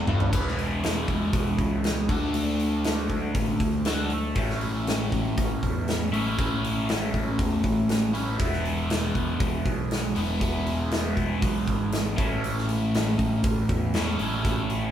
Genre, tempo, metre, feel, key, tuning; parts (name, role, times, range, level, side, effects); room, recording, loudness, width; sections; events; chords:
classic rock; 119 BPM; 4/4; straight; E mixolydian; A4 = 440 Hz
crunchy overdriven guitar; riff; 0.0-14.9 s; G2 to F#4; -26 LUFS; equal; phaser
fuzz picked electric bass; bass; 0.0-14.9 s; E1 to E2; -30 LUFS; equal; overdrive
big rock drum kit; drums; 0.1-14.8 s; crash cymbal, hi-hat, kick drum, snare drum, toms; -28 LUFS; equal
moderate stone room reverb, RT60 0.9 s; band playing live in one room; -23 LUFS; side -10 dB against mid
0.3-14.9 A section
drum fill 0.0-0.3
0.3 E; 2.1 D; 4.4 A; 8.4 E; 12.2 A